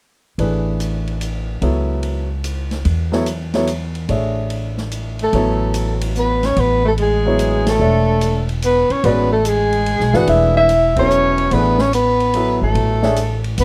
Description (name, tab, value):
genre	modal jazz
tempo	146 BPM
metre	3/4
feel	swing 67% on 8ths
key	A major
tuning	A4 = 438 Hz
part	warm baby grand piano	accompaniment	0.4-13.2 s	E3 to E5	-23 LUFS	equal	none
part	upright bass	bass	0.4-13.6 s	E1 to E2	-22 LUFS	equal	none
part	open jazz drum kit	drums	0.4-13.6 s	hi-hat, kick drum, ride cymbal, snare drum	-31 LUFS	equal	none
part	mellow soprano saxophone	melody	5.2-13.6 s	G#4 to F#5	-20 LUFS	equal	none
part	clear alto saxophone	second line	5.2-13.6 s	G#3 to F#4	-24 LUFS	equal	none
room	light reverb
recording	none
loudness	-17 LUFS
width	mono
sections	0.4-5.3 A section; 5.3-13.6 B section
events	band accent 7.6, 10.9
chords	0.4 Amaj9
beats	| 0.38 0.79 1.21 | 1.62 2.03 2.44 | 2.85 3.27 3.68 | 4.09 4.50 4.92 | 5.33 5.74 6.15 | 6.57 6.98 7.39 | 7.80 8.21 8.63 | 9.04 9.45 9.87 | 10.28 10.69 11.10 | 11.52 11.93 12.34 | 12.76 13.17 13.58